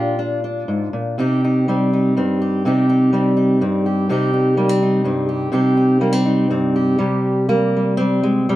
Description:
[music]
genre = folk, solo fingerstyle acoustic guitar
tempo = 123 BPM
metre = 3/4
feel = rubato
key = C minor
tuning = A4 = 436 Hz
[part]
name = fingerpicked steel-string acoustic guitar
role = solo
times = 0.0-8.6 s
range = G2 to G4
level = -15 LUFS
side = equal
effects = none
[sound]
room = moderate studio reverb, RT60 0.7 s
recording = band playing live in one room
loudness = -15 LUFS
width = side -15 dB against mid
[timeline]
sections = 0.0-1.2 A section; 1.2-7.0 B section; 7.0-8.6 C section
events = none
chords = 0.0 Bb; 1.2 Cm; 7.0 C5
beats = 0.19 0.68 | 1.18 1.68 2.17 | 2.65 3.13 3.61 | 4.09 4.57 5.04 | 5.52 6.00 6.49 | 7.00 7.50 8.00 | 8.49

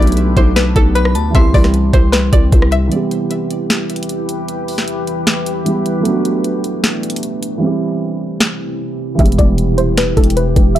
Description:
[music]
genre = hip hop, trap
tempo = 153 BPM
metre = 4/4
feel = half-time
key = E minor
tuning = A4 = 442 Hz
[part]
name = string-like resonator pluck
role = melody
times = 0.0-2.9, 9.2-10.8 s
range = A4 to E5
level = -20 LUFS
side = left 1 dB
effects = chorus, low-pass filter, digital delay
[part]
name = glassy synth bell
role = second line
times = 0.0-2.5 s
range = A5 to D6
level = -27 LUFS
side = left 1 dB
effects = chorus, digital delay
[part]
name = felt-muted upright piano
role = accompaniment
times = 0.0-10.8 s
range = E3 to G4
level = -20 LUFS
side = right 3 dB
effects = low-pass filter
[part]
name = deep dark ambient pad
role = sustained chords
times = 0.0-10.8 s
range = C3 to B4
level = -22 LUFS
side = left 1 dB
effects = chorus, built-in reverb
[part]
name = growling 808-style bass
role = bass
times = 0.0-2.9, 9.2-10.8 s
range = D1 to D2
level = -14 LUFS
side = equal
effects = none
[part]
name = trap drum kit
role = drums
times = 0.0-10.8 s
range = hi-hat, kick drum, rim click, snare drum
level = -14 LUFS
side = equal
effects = none
[sound]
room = digital ambience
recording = dark, warm production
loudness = -12 LUFS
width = side -12 dB against mid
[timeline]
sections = 0.0-2.9 A section; 2.9-10.8 B section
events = break 2.9-9.2; filter sweep 2.9-10.8; hi-hats muted 7.6-9.2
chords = 0.0 Bm7; 1.3 C; 2.9 Em; 6.1 Bm7; 7.6 C; 9.2 Em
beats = 0.17 0.56 0.95 | 1.35 1.74 2.13 2.52 | 2.92 3.31 3.70 4.09 | 4.48 4.88 5.27 5.66 | 6.05 6.45 6.84 7.23 | 7.62 8.01 8.41 8.80 | 9.19 9.58 9.97 10.37 | 10.76

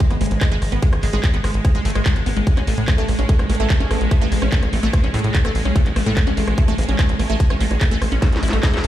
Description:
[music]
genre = psychedelic trance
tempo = 146 BPM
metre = 4/4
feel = straight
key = unclear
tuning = A4 = 440 Hz
[part]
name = evolving wavetable pad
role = sustained chords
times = 0.0-8.9 s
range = G#3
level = -26 LUFS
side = equal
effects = ensemble chorus, built-in reverb, sidechain pumping
[part]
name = drum and bass drum kit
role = drums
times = 0.0-8.9 s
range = handclaps, hi-hat, rim click, snare drum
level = -27 LUFS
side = equal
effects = none
[part]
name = electronic kick drum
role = drums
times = 0.0-8.7 s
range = none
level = -16 LUFS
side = equal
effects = none
[part]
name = wide unison pluck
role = riff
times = 0.1-8.9 s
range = G#3 to A4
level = -25 LUFS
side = moving between left 4 dB and right 5 dB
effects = auto-pan, sidechain pumping, ping-pong delay
[part]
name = tight sequencer bass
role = bass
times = 0.1-8.9 s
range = G#1 to A2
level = -20 LUFS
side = equal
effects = none
[part]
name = vowel-sweep wobble bass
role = second line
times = 0.2-7.9 s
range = B3 to C#4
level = -36 LUFS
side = right 2 dB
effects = none
[part]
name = swell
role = sound effects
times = 8.3-8.9 s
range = none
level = -28 LUFS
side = left 1 dB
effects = none
[sound]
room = light reverb, digital ambience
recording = played on a big sound system in a bare room, stone room reverb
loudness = -16 LUFS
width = side -13 dB against mid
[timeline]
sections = 0.0-8.9 A section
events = drum fill 8.2-8.9; swell 8.3-8.9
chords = 0.0 N.C.; 2.5 A5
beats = 0.00 0.41 | 0.82 1.24 1.65 2.06 | 2.47 2.88 3.29 3.70 | 4.11 4.52 4.93 5.34 | 5.76 6.17 6.58 6.99 | 7.40 7.81 8.22 8.63

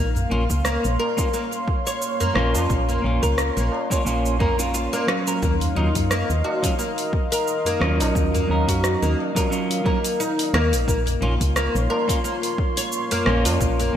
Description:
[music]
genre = organic downtempo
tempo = 88 BPM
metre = 4/4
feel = swing 56% on 16ths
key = Bb minor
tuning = A4 = 442 Hz
[part]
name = warm analog pad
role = sustained chords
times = 0.0-14.0 s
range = Bb3 to C6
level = -28 LUFS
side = equal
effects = chorus, sidechain pumping
[part]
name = oud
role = arpeggios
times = 0.0-13.9 s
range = Bb3 to Db5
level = -26 LUFS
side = left 1 dB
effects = ping-pong delay
[part]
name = woody FM bass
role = bass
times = 0.0-14.0 s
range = Bb1 to Gb2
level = -23 LUFS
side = equal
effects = sidechain pumping
[part]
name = deep house drum kit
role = drums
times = 0.2-13.9 s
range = cabasa, hi-hat, rim click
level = -28 LUFS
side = equal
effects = gated reverb
[part]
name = tabla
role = percussion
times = 0.2-13.9 s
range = none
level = -32 LUFS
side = equal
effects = none
[part]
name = semi-hollow electric guitar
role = accompaniment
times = 0.3-14.0 s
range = Gb3 to Bb4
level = -27 LUFS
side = right 2 dB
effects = vintage 12-bit sampler grit, sidechain pumping, ping-pong delay
[part]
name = electronic kick drum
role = drums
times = 0.5-13.8 s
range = none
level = -24 LUFS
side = equal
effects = none
[sound]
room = moderate lush hall reverb, RT60 1.8 s, digital ambience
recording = bright 1980s-style digital production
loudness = -19 LUFS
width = side -10 dB against mid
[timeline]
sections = 0.0-14.0 A section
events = none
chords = 0.0 Bbm; 5.4 Ebm7; 10.9 Bbm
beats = 0.65 1.33 2.02 | 2.70 3.38 4.06 4.74 | 5.42 6.11 6.79 7.47 | 8.15 8.83 9.52 10.20 | 10.88 11.56 12.24 12.93 | 13.61

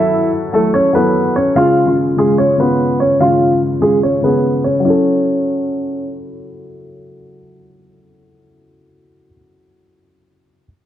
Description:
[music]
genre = hip hop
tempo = 146 BPM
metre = 4/4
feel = half-time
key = F# minor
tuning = A4 = 439 Hz
[part]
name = warm concert grand piano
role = melody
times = 0.0-6.0 s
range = G#3 to E#5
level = -14 LUFS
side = right 1 dB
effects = low-pass filter
[part]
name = felt-muted upright piano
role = accompaniment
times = 0.0-10.7 s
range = C#3 to A4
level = -17 LUFS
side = left 2 dB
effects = low-pass filter
[sound]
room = moderate recital hall reverb, RT60 1.4 s, studio ambience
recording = dark, warm production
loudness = -12 LUFS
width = side -11 dB against mid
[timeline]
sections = 0.0-4.8 A section; 4.8-8.1 B section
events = filter sweep 0.0-4.8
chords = 0.0 F#m7; 1.6 C#; 4.8 F#m7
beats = 0.33 0.74 1.15 | 1.56 1.97 2.38 2.79 | 3.21 3.62 4.03 4.44 | 4.85 5.26 5.67 6.08 | 6.49 6.91 7.32 7.73

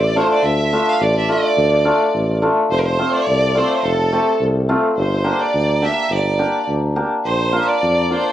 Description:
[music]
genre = klezmer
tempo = 106 BPM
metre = 2/4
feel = straight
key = F major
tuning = A4 = 440 Hz
[part]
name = bright violin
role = melody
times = 0.0-8.3 s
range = A4 to F5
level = -20 LUFS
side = right 5 dB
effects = cassette tape, plate reverb
[part]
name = clear violin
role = second line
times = 0.0-8.3 s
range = A4 to E5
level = -24 LUFS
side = left 6 dB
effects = cassette tape, plate reverb
[part]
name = mellow tuba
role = bass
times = 0.0-8.2 s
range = F1 to F2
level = -20 LUFS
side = equal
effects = none
[part]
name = hammered dulcimer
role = accompaniment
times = 0.2-8.2 s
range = A3 to G4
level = -19 LUFS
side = left 1 dB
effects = cassette tape, plate reverb
[sound]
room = moderate studio reverb, RT60 0.6 s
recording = home recording on cassette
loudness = -15 LUFS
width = side -12 dB against mid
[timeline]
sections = 0.0-2.7 A section; 2.7-8.3 B section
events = none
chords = 0.0 Dm; 2.7 F; 5.0 Gm; 7.2 Bb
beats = | 0.45 1.01 | 1.57 2.14 | 2.71 3.27 | 3.84 4.41 | 4.97 5.54 | 6.11 6.68 | 7.25 7.82

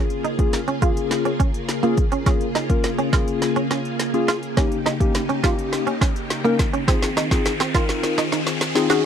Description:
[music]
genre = dance-pop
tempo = 104 BPM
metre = 4/4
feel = straight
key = unclear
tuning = A4 = 438 Hz
[part]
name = warm analog keys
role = accompaniment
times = 0.0-9.1 s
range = Bb3 to Bb4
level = -23 LUFS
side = left 4 dB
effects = chorus, sidechain pumping
[part]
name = string machine, violins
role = sustained chords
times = 0.0-9.1 s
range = Db3 to Ab4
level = -26 LUFS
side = left 1 dB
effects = ensemble chorus, sidechain pumping
[part]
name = direct-recorded clean electric guitar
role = riff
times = 0.0-9.0 s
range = Bb3 to Gb4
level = -24 LUFS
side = right 6 dB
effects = ensemble chorus
[part]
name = deep house drum kit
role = drums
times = 0.1-9.0 s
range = hi-hat, kick drum, snare drum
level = -21 LUFS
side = equal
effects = none
[part]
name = riser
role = sound effects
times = 4.3-9.1 s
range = none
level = -32 LUFS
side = left 1 dB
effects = none
[sound]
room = light reverb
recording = dry, close 1970s-style studio recording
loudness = -18 LUFS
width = side -8 dB against mid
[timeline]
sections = 0.0-9.1 A section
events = build-up 0.0-9.1; drum fill 0.0-9.1; riser 4.3-9.1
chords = 0.0 Db6; 4.6 Eb7; 6.9 Fm7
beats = 0.53 1.11 1.69 | 2.27 2.84 3.42 4.00 | 4.57 5.15 5.73 6.30 | 6.88 7.46 8.03 8.61

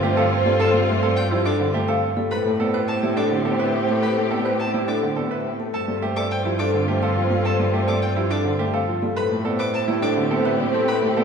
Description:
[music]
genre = classical, minimalist pattern music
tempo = 105 BPM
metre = 3/4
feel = straight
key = A minor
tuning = A4 = 440 Hz
[part]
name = vibraphone with medium mallets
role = melody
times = 0.0-11.2 s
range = G4 to F5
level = -26 LUFS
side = left 7 dB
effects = none
[part]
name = warm baby grand piano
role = accompaniment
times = 0.0-11.2 s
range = D3 to B3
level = -27 LUFS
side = left 1 dB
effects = none
[part]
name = dark chamber string section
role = sustained chords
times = 0.0-11.2 s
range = C4 to G4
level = -28 LUFS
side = left 2 dB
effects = none
[part]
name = bright concert grand piano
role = arpeggios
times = 0.0-11.2 s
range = C4 to B4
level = -27 LUFS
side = right 5 dB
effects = none
[part]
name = rich cello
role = bass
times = 0.0-11.2 s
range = G2 to A2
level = -25 LUFS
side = right 2 dB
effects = none
[part]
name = dark French horn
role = second line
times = 0.1-11.2 s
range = C5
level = -27 LUFS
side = right 4 dB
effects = none
[part]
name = rich violin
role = arpeggios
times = 0.6-11.0 s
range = G5 to D6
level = -34 LUFS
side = left 2 dB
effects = none
[sound]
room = wet scoring stage reverb, RT60 1.9 s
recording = minimal, uncompressed stereo recording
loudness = -19 LUFS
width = side -6 dB against mid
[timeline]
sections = 0.0-11.2 A section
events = none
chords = 0.0 G9sus4; 2.3 Am9; 5.7 G9sus4; 9.2 Am9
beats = 0.03 | 0.60 1.17 1.74 | 2.31 2.88 3.46 | 4.03 4.60 5.17 | 5.74 6.31 6.88 | 7.46 8.03 8.60 | 9.17 9.74 10.31 | 10.88

